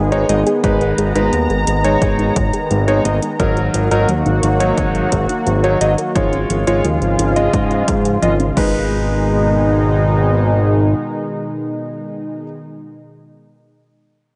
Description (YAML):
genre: synthwave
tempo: 87 BPM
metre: 4/4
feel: straight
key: G# dorian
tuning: A4 = 435 Hz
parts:
  - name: lush unison pad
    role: sustained chords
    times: 0.0-12.4 s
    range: B2 to A#5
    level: -22 LUFS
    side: equal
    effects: chorus, sidechain pumping
  - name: soft round pluck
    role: arpeggios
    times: 0.0-9.2 s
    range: E#3 to B4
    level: -28 LUFS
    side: equal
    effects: none
  - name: fat analog bass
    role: bass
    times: 0.0-10.9 s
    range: G#1 to G#2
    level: -20 LUFS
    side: equal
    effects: none
  - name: clear electric grand piano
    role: stabs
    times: 0.1-12.4 s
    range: F#3 to D#5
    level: -22 LUFS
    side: equal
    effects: low-pass filter, delay
  - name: 80s electronic pad drums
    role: drums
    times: 0.1-8.7 s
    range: crash cymbal, hi-hat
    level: -30 LUFS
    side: equal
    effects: none
  - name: electronic kick drum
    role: drums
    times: 0.6-8.7 s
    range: none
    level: -23 LUFS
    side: equal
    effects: none
room: moderate lush hall reverb, RT60 2.0 s, digital ambience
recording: nothing above 10.6 kHz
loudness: -16 LUFS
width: mono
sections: 0.0-8.9 A section; 8.9-11.7 B section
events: none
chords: 0.0 G#m; 3.4 D#m/G#; 6.2 C#/G#; 8.6 G#m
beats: | 0.64 1.33 2.02 2.71 | 3.40 4.09 4.78 5.46 | 6.16 6.84 7.53 8.22 | 8.91 9.60 10.29 10.98